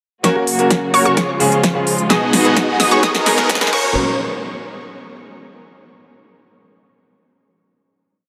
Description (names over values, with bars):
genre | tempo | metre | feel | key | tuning
EDM, festival progressive house | 129 BPM | 4/4 | straight | F# major | A4 = 440 Hz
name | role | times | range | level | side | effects
bright baby grand piano | accompaniment | 0.2-3.9 s | G#2 to A#4 | -22 LUFS | equal | sidechain pumping, digital delay
muted studio string section | sustained chords | 0.2-3.9 s | A#2 to A#4 | -24 LUFS | equal | vintage 12-bit sampler grit, sidechain pumping, low-pass filter
unison pluck | arpeggios | 0.2-3.9 s | C#6 to D#6 | -24 LUFS | equal | sidechain pumping, digital delay
dense compressed supersaw | riff | 0.2-3.9 s | B3 to D#5 | -22 LUFS | equal | sidechain pumping, low-pass filter, digital delay
saturated sub bass | bass | 0.2-3.9 s | none | barely audible | none | none
big-room dance drum kit | drums | 0.2-3.8 s | crash cymbal, hi-hat, rim click, snare drum | -21 LUFS | equal | overdrive
electronic kick drum | drums | 0.2-3.8 s | none | -25 LUFS | equal | high-pass filter on kick
riser | sound effects | 1.7-4.0 s | none | -30 LUFS | equal | none
room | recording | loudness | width
moderate huge ambient reverb, RT60 4.3 s | high-pass filter | -15 LUFS | mono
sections
0.2-4.0 build; 4.0-5.8 final hit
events
build-up 0.2-4.0; drum fill 0.2-4.0; filter sweep on supersaw synth 0.2-4.0; filter sweep on synth pluck 0.2-4.0; filter sweep on string section 0.2-4.0; filter sweep 0.2-4.0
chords
0.2 F#; 1.2 C#; 2.1 B6; 3.0 G#madd9; 3.7 F#; 4.0 N.C.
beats
| 0.24 0.70 1.17 1.64 | 2.10 2.57 3.03 3.50 | 3.96